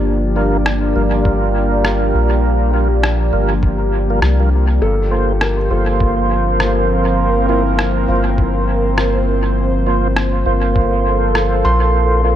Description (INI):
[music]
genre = ambient dub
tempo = 101 BPM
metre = 4/4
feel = swing 60% on 16ths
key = G minor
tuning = A4 = 440 Hz
[part]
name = warbly tape-like pad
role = sustained chords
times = 0.0-12.4 s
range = F3 to D5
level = -19 LUFS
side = equal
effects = chorus, built-in reverb, vintage 12-bit sampler grit
[part]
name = soft dub sub bass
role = bass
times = 0.0-12.4 s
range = G1 to C2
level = -17 LUFS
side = equal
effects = none
[part]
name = mellow tonewheel organ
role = stabs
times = 0.4-12.4 s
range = G3 to C5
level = -20 LUFS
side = right 3 dB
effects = overdrive, chorus vibrato, slow rotary speaker, dub echo
[part]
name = electronic rim click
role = drums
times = 0.7-11.5 s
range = none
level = -24 LUFS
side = equal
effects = small room ambience, dub echo
[part]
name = electronic kick drum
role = drums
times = 1.3-10.9 s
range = none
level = -18 LUFS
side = equal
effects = small room ambience
[part]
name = felt-muted upright piano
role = arpeggios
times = 4.8-12.4 s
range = E4 to C6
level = -25 LUFS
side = left 2 dB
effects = tape echo
[sound]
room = little or no reverb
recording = echo-heavy mix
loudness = -13 LUFS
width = side -11 dB against mid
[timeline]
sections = 0.0-12.4 A section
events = none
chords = 0.0 Gm7